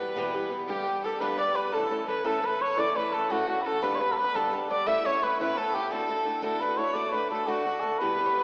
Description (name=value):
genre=celtic folk, Celtic jig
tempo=115 BPM (dotted quarters)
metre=6/8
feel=straight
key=D major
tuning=A4 = 441 Hz
part: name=trumpet with cup mute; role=melody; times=0.0-8.4 s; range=F#4 to E5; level=-30 LUFS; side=equal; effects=none
part: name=bright fiddle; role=second line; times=0.0-8.4 s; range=F#4 to E5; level=-39 LUFS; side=equal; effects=none
part: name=open-back banjo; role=second line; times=0.0-6.6 s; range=F#4 to E5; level=-40 LUFS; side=equal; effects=none
part: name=picked old ladder-braced acoustic guitar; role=accompaniment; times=0.0-8.4 s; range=E2 to A4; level=-34 LUFS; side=equal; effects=none
room=wet church reverb, RT60 2.6 s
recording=recorded in a church or concert hall, small speaker sound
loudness=-28 LUFS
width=mono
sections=0.0-7.0 A section; 7.0-8.4 A section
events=none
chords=0.0 Em; 0.7 G; 1.7 A; 3.8 G; 4.9 Aadd9; 5.9 Dadd9; 7.0 D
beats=0.17 | 0.69 1.21 | 1.73 2.25 | 2.78 3.30 | 3.82 4.34 | 4.87 5.39 | 5.91 6.43 | 6.95 7.47 | 8.00